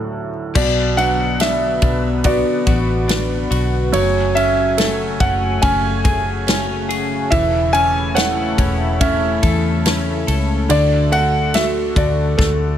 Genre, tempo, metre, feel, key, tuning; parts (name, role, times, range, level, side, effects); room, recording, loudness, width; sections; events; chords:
pop ballad; 71 BPM; 4/4; straight; A4 = 441 Hz
warm baby grand piano; melody; 0.0-12.8 s; A4 to G#5; -20 LUFS; equal
felt-muted upright piano; accompaniment; 0.0-12.8 s; D2 to C#5; -23 LUFS; right 5 dB
chorused pulse-width pad; sustained chords; 0.6-12.8 s; C#3 to G#5; -25 LUFS; left 1 dB
direct-recorded clean electric guitar; arpeggios; 0.6-12.8 s; F#2 to A4; -25 LUFS; left 8 dB; spring reverb
vintage muted fingered electric bass; bass; 0.6-12.8 s; E1 to E2; -21 LUFS; left 1 dB
natural country drum kit; drums; 0.6-12.6 s; crash cymbal, kick drum, ride cymbal, snare drum; -21 LUFS; equal
light reverb, small room reverb; -14 LUFS; side -10 dB against mid
0.6-12.8 A section
drum fill 12.4-12.8
0.0 D; 0.6 Bm; 3.9 F#madd9; 7.3 A/E; 10.7 D